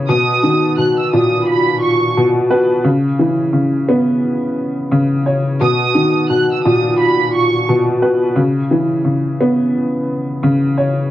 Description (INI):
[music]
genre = hip hop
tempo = 87 BPM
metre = 4/4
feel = swing 62% on 16ths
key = C# dorian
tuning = A4 = 440 Hz
[part]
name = dark upright piano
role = accompaniment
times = 0.0-11.1 s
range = A#2 to C#5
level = -13 LUFS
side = equal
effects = cassette tape, high-pass filter, low-pass filter
[part]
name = warm studio violin section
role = melody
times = 0.1-7.6 s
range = B5 to F#6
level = -18 LUFS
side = right 5 dB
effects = high-pass filter, low-pass filter, slapback echo
[sound]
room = moderate studio reverb, RT60 0.6 s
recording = dark, warm production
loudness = -13 LUFS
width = side -13 dB against mid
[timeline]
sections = 0.1-11.1 A section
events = none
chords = 0.1 Bmaj7; 2.8 C#m7; 5.6 Bmaj7; 8.4 C#m7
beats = | 0.09 0.78 1.47 2.16 | 2.85 3.54 4.23 4.92 | 5.61 6.30 6.99 7.68 | 8.37 9.06 9.75 10.44